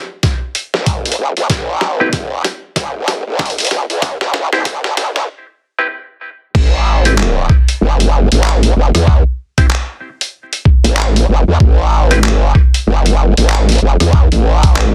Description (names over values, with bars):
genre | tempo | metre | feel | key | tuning
glitch hop | 95 BPM | 4/4 | swing 60% on 16ths | A minor | A4 = 437 Hz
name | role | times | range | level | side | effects
boom bap sampler-style drum kit | drums | 0.2-14.9 s | crash cymbal, handclaps, hi-hat, rim click, snare drum | -20 LUFS | equal | soft clipping on snare, high-pass filter on snare, high-pass filter on hats, high-pass filter on cymbals
electronic kick drum | drums | 0.2-14.7 s | none | -13 LUFS | equal | none
growl bass | bass | 0.7-14.9 s | G1 to E2 | -15 LUFS | equal | chorus, high-pass filter
mellow clav | stabs | 2.0-12.2 s | C4 to C5 | -20 LUFS | equal | sidechain pumping, delay
room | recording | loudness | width
little or no reverb | dense, heavily limited modern master, high-pass filter | -13 LUFS | mono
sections
0.0-6.5 A section; 6.5-14.9 B section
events
build-up 0.0-6.5; drum fill 0.0-5.3; break 5.3-6.5; drop 6.5-14.9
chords
0.0 A7(no3)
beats
0.23 0.87 | 1.50 2.13 2.76 3.39 | 4.02 4.66 5.29 5.92 | 6.55 7.18 7.81 8.45 | 9.08 9.71 10.34 10.97 | 11.60 12.23 12.87 13.50 | 14.13 14.76